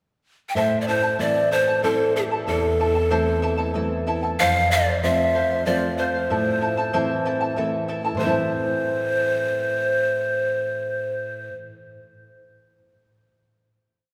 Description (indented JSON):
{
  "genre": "andean folk, Andean ensemble",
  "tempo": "94 BPM",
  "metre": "3/4",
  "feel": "straight",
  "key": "A minor",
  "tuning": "A4 = 440 Hz",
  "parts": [
    { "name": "breathy mellow large pan pipes", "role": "melody", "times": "0.5-11.5 s", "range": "G4 to G5", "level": "-24 LUFS", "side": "equal", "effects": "none" },
    { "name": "charango", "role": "accompaniment", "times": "0.6-11.8 s", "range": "E4 to A5", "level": "-29 LUFS", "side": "equal", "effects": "none" },
    { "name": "nylon-string guitar", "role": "accompaniment", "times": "0.6-11.6 s", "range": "E2 to E4", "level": "-29 LUFS", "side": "equal", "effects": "none" }
  ],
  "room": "wet church reverb, RT60 3.1 s",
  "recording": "recorded in a church or concert hall",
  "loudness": "-22 LUFS",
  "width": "mono",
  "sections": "0.0-0.6 pickup bar; 0.6-8.2 A section; 8.2-12.0 final chord",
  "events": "none",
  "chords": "0.0 N.C.; 0.6 Am; 4.4 F; 6.3 Am"
}